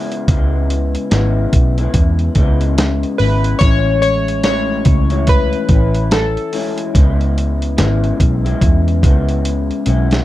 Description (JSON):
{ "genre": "indie pop, bedroom pop", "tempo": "72 BPM", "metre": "4/4", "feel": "swing 60% on 16ths", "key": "C# minor", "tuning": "A4 = 439 Hz", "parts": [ { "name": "electric guitar through a small old amp", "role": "accompaniment", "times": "0.0-10.2 s", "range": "A2 to E4", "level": "-20 LUFS", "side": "left 4 dB", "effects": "lush chorus, vibrato effect" }, { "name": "dusty soul sampler-style drum kit", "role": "drums", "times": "0.1-10.2 s", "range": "hi-hat, kick drum, snare drum", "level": "-15 LUFS", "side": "equal", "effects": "none" }, { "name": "vintage muted picked electric bass", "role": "bass", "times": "0.3-10.2 s", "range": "G#1 to E2", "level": "-16 LUFS", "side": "equal", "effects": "none" }, { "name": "chorused retro synth keys", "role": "melody", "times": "3.2-6.7 s", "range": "A4 to C#5", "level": "-18 LUFS", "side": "left 1 dB", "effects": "wide subtle chorus, slapback echo" } ], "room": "light reverb", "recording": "dark, warm production", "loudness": "-12 LUFS", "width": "side -15 dB against mid", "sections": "0.0-10.2 A section", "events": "drum fill 9.4-10.2", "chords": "0.0 C#m7; 3.6 Amaj7; 6.9 C#m7" }